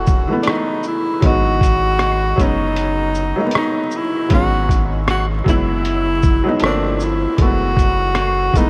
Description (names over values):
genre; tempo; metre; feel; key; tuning
lo-fi hip hop; 78 BPM; 4/4; swing 58% on 16ths; unclear; A4 = 442 Hz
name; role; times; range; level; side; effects
warm tenor saxophone; melody; 0.0-8.7 s; D4 to F#4; -22 LUFS; equal; diffuse ambient delay
felt-muted upright piano; accompaniment; 0.0-8.7 s; E3 to E4; -24 LUFS; equal; cassette tape
saturated sub bass; bass; 0.0-8.7 s; E1 to G#1; -24 LUFS; equal; none
lo-fi sampler-style drum kit; drums; 0.1-8.7 s; hi-hat, kick drum, rim click, shaker; -21 LUFS; equal; none
room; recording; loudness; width
moderate huge ambient reverb, RT60 9.6 s; dreamy mix soaked in reverb, vinyl crackle; -17 LUFS; mono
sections
0.0-1.2 A section; 1.2-8.7 A section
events
none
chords
0.0 F#m11; 1.2 G#m7; 4.3 E69/G#; 6.6 Gm11; 7.4 F#m11